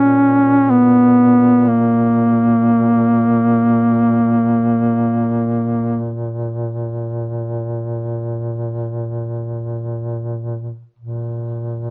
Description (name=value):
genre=caucasian folk, Caucasian lament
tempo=free time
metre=none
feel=none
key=Bb phrygian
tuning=A4 = 441 Hz
part: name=mellow duduk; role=melody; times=0.0-6.1 s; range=Bb3 to Db4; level=-14 LUFS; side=equal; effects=none
part: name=dark duduk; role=drone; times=0.0-11.9 s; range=Bb2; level=-24 LUFS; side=equal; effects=none
room=light reverb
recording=dry, close 1970s-style studio recording, tape saturation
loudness=-16 LUFS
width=mono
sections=0.0-11.0 A section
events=none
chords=none